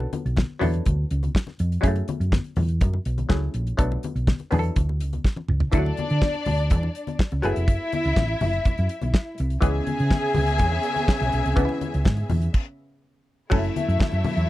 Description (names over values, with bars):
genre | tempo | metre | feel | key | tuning
disco | 123 BPM | 4/4 | straight | F# minor | A4 = 441 Hz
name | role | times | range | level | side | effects
muted clav | accompaniment | 0.0-14.5 s | E3 to A4 | -28 LUFS | left 1 dB | phaser
hollow-body short-scale fingered electric bass | bass | 0.0-14.4 s | E#1 to D3 | -24 LUFS | equal | none
congas | percussion | 0.0-14.4 s | none | -31 LUFS | left 4 dB | none
damped 70s drum kit | drums | 0.1-14.5 s | crash cymbal, hi-hat, kick drum, snare drum, toms | -21 LUFS | equal | none
warm studio string section | second line | 5.7-14.5 s | D4 to G#5 | -27 LUFS | left 2 dB | none
clear studio string section | sustained chords | 9.6-14.5 s | C#3 to E5 | -30 LUFS | right 1 dB | none
room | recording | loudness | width
little or no reverb | dry, close 1970s-style studio recording | -21 LUFS | side -16 dB against mid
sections
0.0-5.7 A section; 5.7-13.5 B section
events
drum fill 5.2-5.7; stop 12.5-13.5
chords
0.0 Bm7; 0.6 E9sus4; 1.8 F#m9; 3.8 Bm7; 4.5 E9sus4; 5.7 Dadd9; 7.4 F#m11; 9.6 C#m7; 13.5 F#m7